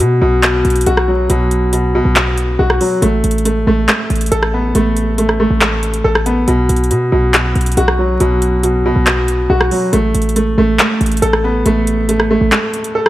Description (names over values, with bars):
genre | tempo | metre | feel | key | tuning
hip hop, trap | 139 BPM | 4/4 | half-time | unclear | A4 = 440 Hz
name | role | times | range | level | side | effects
clear grand piano | accompaniment | 0.0-13.1 s | B2 to A4 | -14 LUFS | equal | low-pass filter
hard-hitting 808-style bass | bass | 0.0-12.5 s | A1 to B2 | -16 LUFS | equal | none
trap drum kit | drums | 0.0-13.1 s | handclaps, hi-hat, rim click | -16 LUFS | equal | overdrive
room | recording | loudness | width
light reverb | vinyl crackle | -11 LUFS | side -15 dB against mid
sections
0.0-13.1 A section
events
kick muted 12.5-13.1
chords
0.0 B5; 3.0 Asus2; 6.5 B5; 9.9 Asus2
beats
0.00 0.43 0.86 | 1.30 1.73 2.16 2.59 | 3.02 3.45 3.89 4.32 | 4.75 5.18 5.61 6.04 | 6.48 6.91 7.34 7.77 | 8.20 8.63 9.07 9.50 | 9.93 10.36 10.79 11.22 | 11.66 12.09 12.52 12.95